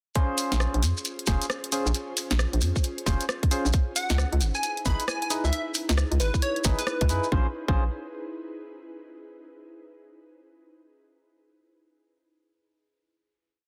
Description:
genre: UK garage, two-step garage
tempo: 134 BPM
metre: 4/4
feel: swing 63% on 16ths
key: Bb minor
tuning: A4 = 442 Hz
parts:
  - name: ethereal airy pad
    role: sustained chords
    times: 0.9-7.5 s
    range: Db4 to C5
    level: -41 LUFS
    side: equal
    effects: ensemble chorus, built-in reverb, sidechain pumping
  - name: percussive organ stab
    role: stabs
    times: 0.2-7.8 s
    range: Db4 to C5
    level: -34 LUFS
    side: equal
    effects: chorus, tape echo
  - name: electronic kick drum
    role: drums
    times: 0.2-7.8 s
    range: none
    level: -27 LUFS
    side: equal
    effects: none
  - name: garage drum kit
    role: drums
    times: 0.2-7.2 s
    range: hi-hat, rim click, snare drum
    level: -33 LUFS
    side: equal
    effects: none
  - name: maracas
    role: percussion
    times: 0.2-7.3 s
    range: none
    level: -36 LUFS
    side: equal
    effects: none
  - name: hollow knocking FM bass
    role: bass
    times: 0.5-7.9 s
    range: F1 to Gb2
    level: -27 LUFS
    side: equal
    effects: tube saturation
  - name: plucky unison lead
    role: melody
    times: 4.0-7.3 s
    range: Cb5 to Cb6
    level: -33 LUFS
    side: equal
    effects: tape echo
room: little or no reverb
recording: dense, heavily limited modern master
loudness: -26 LUFS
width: mono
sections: 0.2-7.3 drop; 7.3-9.1 final chord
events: drop 0.2-7.3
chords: 0.2 Bbm9; 3.7 Dbm9; 7.3 Bbm9

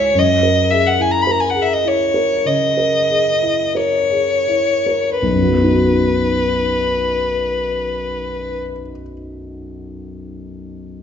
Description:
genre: classical, romantic duo for violin and grand piano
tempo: 39-54 BPM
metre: 4/4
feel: rubato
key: B major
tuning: A4 = 440 Hz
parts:
  - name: rich violin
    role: melody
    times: 0.0-8.6 s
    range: B4 to B5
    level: -16 LUFS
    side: left 1 dB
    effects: none
  - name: dark grand piano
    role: accompaniment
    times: 0.0-11.0 s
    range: B1 to C#5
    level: -19 LUFS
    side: left 1 dB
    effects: none
room: wet recital hall reverb, RT60 1.4 s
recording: nothing above 7.8 kHz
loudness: -14 LUFS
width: side -8 dB against mid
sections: 0.0-5.2 A section; 5.2-10.8 B section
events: slowing down 0.0-5.2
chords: 0.2 F#9; 5.2 B

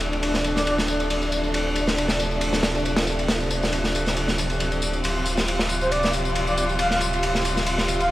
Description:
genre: breakbeat, breaks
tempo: 137 BPM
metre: 4/4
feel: straight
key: D minor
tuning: A4 = 440 Hz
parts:
  - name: warm studio string section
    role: sustained chords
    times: 0.0-8.1 s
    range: C3 to F4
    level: -25 LUFS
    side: equal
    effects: none
  - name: saturated sub bass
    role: bass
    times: 0.0-8.1 s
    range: D1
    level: -29 LUFS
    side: equal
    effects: none
  - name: crunchy breakbeat drum kit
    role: drums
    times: 0.0-8.1 s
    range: ride cymbal, snare drum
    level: -24 LUFS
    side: equal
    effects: high-pass filter on kick, high-pass filter on cymbals, high-pass filter on snare, high-pass filter on room
  - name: tambourine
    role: drums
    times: 0.0-8.1 s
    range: none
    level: -34 LUFS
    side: left 4 dB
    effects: low-pass filter on perc, low-pass filter on snare
  - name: breathy flute-like synth lead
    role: melody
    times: 0.6-0.7, 5.8-8.1 s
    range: C5 to F5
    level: -27 LUFS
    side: equal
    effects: chorus, old record sound, ping-pong delay
room: light reverb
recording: vinyl crackle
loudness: -20 LUFS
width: side -15 dB against mid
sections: 0.0-8.1 A section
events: none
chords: 0.0 Dm7

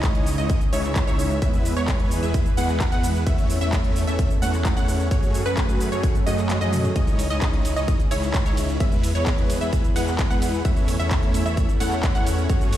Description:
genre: EDM, festival progressive house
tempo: 130 BPM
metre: 4/4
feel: straight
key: unclear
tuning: A4 = 441 Hz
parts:
  - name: lush unison pad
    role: sustained chords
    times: 0.0-12.8 s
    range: C#3 to B4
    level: -32 LUFS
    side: equal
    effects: chorus, sidechain pumping
  - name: wide unison pluck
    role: arpeggios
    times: 0.0-12.8 s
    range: B4 to F#5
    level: -30 LUFS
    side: right 1 dB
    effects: sidechain pumping, ping-pong delay
  - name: dense compressed supersaw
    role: riff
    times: 0.0-12.8 s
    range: G#3 to F#5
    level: -28 LUFS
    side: equal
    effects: sidechain pumping, ping-pong delay
  - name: wide detuned saw bass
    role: bass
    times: 0.0-12.8 s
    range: C#2 to F#2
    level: -26 LUFS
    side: equal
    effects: chorus, sidechain pumping
  - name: big-room dance drum kit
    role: drums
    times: 0.0-12.8 s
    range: handclaps, hi-hat, ride cymbal, shaker, toms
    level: -31 LUFS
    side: equal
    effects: none
  - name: electronic kick drum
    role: drums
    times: 0.0-12.6 s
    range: none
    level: -22 LUFS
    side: equal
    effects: none
room: digital ambience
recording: played on a big sound system in a bare room, stone room reverb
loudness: -19 LUFS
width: side -12 dB against mid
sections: 0.0-12.8 A section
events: kick drops out 6.5-7.0; drum fill 6.5-7.0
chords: 0.0 C#madd9; 1.4 E; 3.3 A/E; 5.1 F#madd9; 7.0 C#madd9; 8.8 E; 10.7 A/E

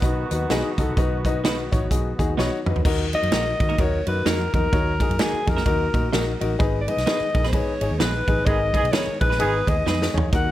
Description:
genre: uptempo 1960s-style soul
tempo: 128 BPM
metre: 4/4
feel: swing 60% on 8ths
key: Eb minor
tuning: A4 = 440 Hz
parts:
  - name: mellow horn section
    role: second line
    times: 0.0-2.6, 8.5-9.8 s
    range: D#3 to Ab4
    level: -30 LUFS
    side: right 3 dB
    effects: none
  - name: warm upright piano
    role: accompaniment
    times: 0.0-10.5 s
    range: D#4 to C#5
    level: -27 LUFS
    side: left 5 dB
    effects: none
  - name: mellow tonewheel organ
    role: sustained chords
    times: 0.0-10.5 s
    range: D#3 to Ab4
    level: -35 LUFS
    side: right 1 dB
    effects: none
  - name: vintage muted fingered electric bass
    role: bass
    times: 0.0-10.5 s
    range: Ab1 to Eb3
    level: -26 LUFS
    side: equal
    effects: none
  - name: natural country drum kit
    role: drums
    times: 0.0-10.5 s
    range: crash cymbal, hi-hat, kick drum, ride cymbal, snare drum, toms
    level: -24 LUFS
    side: right 1 dB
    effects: none
  - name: congas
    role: percussion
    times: 0.0-10.2 s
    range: none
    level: -35 LUFS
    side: right 2 dB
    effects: none
  - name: clean electric guitar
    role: stabs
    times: 0.5-10.0 s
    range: Bb3 to B4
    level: -29 LUFS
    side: right 8 dB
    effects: none
  - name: warm alto saxophone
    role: melody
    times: 3.1-10.5 s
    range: Ab4 to Gb5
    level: -25 LUFS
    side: left 1 dB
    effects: none
room: small room ambience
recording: none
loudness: -19 LUFS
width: side -14 dB against mid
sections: 0.0-2.9 A section; 2.9-10.5 B section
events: drum fill 2.4-2.9, 9.9-10.3; band accent 8.5-10.3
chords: 0.0 B; 2.9 Ebm; 6.6 Abm

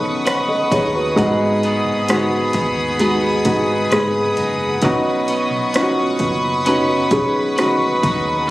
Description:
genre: pop ballad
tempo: 66 BPM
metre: 4/4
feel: straight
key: unclear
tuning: A4 = 440 Hz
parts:
  - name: felt-muted upright piano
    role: accompaniment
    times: 0.0-8.5 s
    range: G#2 to F#5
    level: -18 LUFS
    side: right 1 dB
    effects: none
  - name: rich studio string section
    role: sustained chords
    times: 0.0-8.5 s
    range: G#4 to D#6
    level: -21 LUFS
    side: left 1 dB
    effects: none
  - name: electric guitar at the edge of break-up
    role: arpeggios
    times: 0.0-8.5 s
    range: G#2 to B4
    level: -24 LUFS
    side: left 1 dB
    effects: tape echo
  - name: hollow-body short-scale fingered electric bass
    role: bass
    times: 0.0-8.5 s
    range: F#1 to D#2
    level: -30 LUFS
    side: equal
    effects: none
  - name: pop drum kit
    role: drums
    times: 0.1-8.2 s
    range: hi-hat, kick drum, rim click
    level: -23 LUFS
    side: equal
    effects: none
room: light reverb, digital ambience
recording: recorded on a phone in the room, studio reverb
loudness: -15 LUFS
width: side -17 dB against mid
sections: 0.0-8.5 A section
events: none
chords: 0.0 Badd9; 1.2 G#m7; 4.8 Badd9

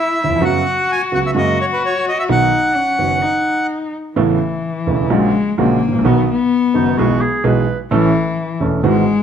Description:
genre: tango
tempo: 128 BPM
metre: 4/4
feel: rubato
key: B major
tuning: A4 = 440 Hz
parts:
  - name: bandoneon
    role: melody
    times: 0.0-3.7 s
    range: B4 to G#5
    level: -17 LUFS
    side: right 1 dB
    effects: none
  - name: warm cello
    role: second line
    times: 0.0-9.2 s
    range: E3 to F#4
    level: -18 LUFS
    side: left 5 dB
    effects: none
  - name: warm concert grand piano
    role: accompaniment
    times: 0.2-9.0 s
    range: E1 to A4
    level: -16 LUFS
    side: right 3 dB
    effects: none
  - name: warm clarinet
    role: second line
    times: 6.7-7.8 s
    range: D#4 to B4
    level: -22 LUFS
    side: right 2 dB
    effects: none
room: moderate large studio reverb, RT60 1.2 s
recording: none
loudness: -14 LUFS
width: side -8 dB against mid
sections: 0.0-4.2 A section; 4.2-9.2 B section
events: cello solo 4.2-9.2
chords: 0.4 F#sus4; 1.4 F#add9; 2.3 B; 4.2 Aadd9; 5.1 F#add9/A#; 6.0 B; 7.0 E/B; 7.9 A

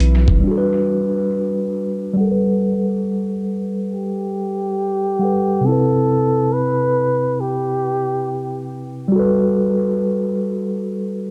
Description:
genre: hip hop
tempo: 69 BPM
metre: 4/4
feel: swing 64% on 16ths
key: G major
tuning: A4 = 439 Hz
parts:
  - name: mellow tine electric piano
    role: accompaniment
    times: 0.0-11.3 s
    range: C3 to F#5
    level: -21 LUFS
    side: equal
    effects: low-pass filter, analog delay
  - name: breathy flugelhorn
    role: melody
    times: 3.9-8.7 s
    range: G4 to B4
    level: -22 LUFS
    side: equal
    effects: low-pass filter, analog delay
room: light reverb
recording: echo-heavy mix, cassette tape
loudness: -19 LUFS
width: mono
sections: 0.0-2.2 A section; 2.2-11.3 B section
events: filter sweep 2.2-11.3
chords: 0.4 Gmaj7; 2.2 Gmaj9; 5.6 Cmaj7; 9.1 Gmaj9

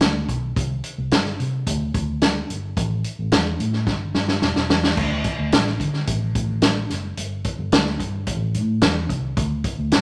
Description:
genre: uptempo 1960s-style soul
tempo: 109 BPM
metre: 4/4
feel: straight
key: unclear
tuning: A4 = 440 Hz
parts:
  - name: vintage muted fingered electric bass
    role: bass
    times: 0.0-10.0 s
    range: E1 to D3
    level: -27 LUFS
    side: equal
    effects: none
  - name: vintage drum kit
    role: drums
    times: 0.0-10.0 s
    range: crash cymbal, hi-hat, kick drum, snare drum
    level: -23 LUFS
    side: equal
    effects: none
room: moderate large studio reverb, RT60 1.1 s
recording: none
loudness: -22 LUFS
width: mono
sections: 0.0-5.0 A section; 5.0-10.0 B section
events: drum fill 3.9-5.0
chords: none

